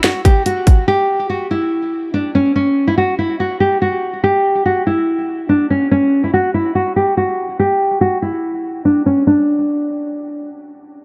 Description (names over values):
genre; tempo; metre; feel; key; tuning
hip hop, drill; 143 BPM; 4/4; half-time; unclear; A4 = 441 Hz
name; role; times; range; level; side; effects
nylon-string guitar; melody; 0.0-10.5 s; C#4 to G4; -17 LUFS; equal; low-pass filter, digital delay
drill drum kit; drums; 0.0-0.8 s; hi-hat, kick drum, snare drum; -13 LUFS; equal; none
room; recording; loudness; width
light reverb; dark, warm production; -16 LUFS; mono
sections
0.0-9.3 A section; 9.3-11.0 B section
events
filter sweep on nylon-string guitar 0.0-9.3; break 0.9-2.6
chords
none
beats
0.04 0.46 | 0.88 1.30 1.72 2.14 | 2.56 2.98 3.40 3.82 | 4.24 4.66 5.08 5.49 | 5.91 6.33 6.75 7.17 | 7.59 8.01 8.43 8.85 | 9.27 9.69 10.11